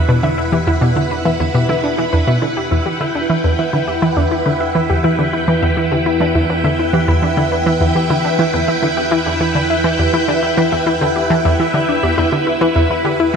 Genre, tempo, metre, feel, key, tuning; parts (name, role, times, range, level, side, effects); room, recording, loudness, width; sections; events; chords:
ambient, sequencer-driven space music; 103 BPM; 4/4; straight; E minor; A4 = 440 Hz
phased string machine; sustained chords; 0.0-13.4 s; E4 to B5; -18 LUFS; equal; ensemble chorus, phaser
wide unison pluck; arpeggios; 0.0-13.3 s; D4 to E5; -20 LUFS; left 2 dB; auto-pan, tape echo
analog pluck; riff; 0.0-13.4 s; E2 to E3; -17 LUFS; equal; chorus, tape echo
analog drone; bass; 0.1-13.4 s; E2; -25 LUFS; equal; chorus
bubbling stepped-filter texture; texture; 0.0-13.4 s; E5; -28 LUFS; right 6 dB; chorus, built-in reverb
wet lush hall reverb, RT60 2.8 s; dreamy mix soaked in reverb; -13 LUFS; side -6 dB against mid
0.0-13.4 A section
fade-in on synth texture 0.0-13.4; filter sweep on synth arpeggio sound 0.0-13.4
0.0 Em7